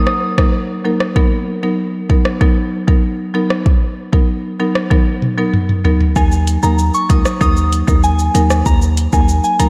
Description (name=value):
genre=dancehall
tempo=96 BPM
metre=4/4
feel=straight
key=Eb minor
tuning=A4 = 440 Hz
part: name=soft synth bell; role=melody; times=0.0-0.3, 6.2-9.7 s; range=Ab5 to Eb6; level=-21 LUFS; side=equal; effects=chorus, analog delay
part: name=buzzing marimba with hard mallets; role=accompaniment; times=0.0-9.7 s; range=Gb3 to Bb4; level=-20 LUFS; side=equal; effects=none
part: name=afro-pop drum kit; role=drums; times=0.1-9.7 s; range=hi-hat, kick drum, rim click, shaker, toms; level=-17 LUFS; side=equal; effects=none
part: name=warm 808-style bass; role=bass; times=6.2-9.7 s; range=Db2 to Eb2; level=-17 LUFS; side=equal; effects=none
room=moderate lush hall reverb, RT60 2.4 s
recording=dreamy mix soaked in reverb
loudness=-15 LUFS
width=mono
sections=0.0-6.2 A section; 6.2-9.7 B section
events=drum fill 4.9-6.2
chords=0.0 Ebm; 1.2 Bmaj7; 6.2 Ebm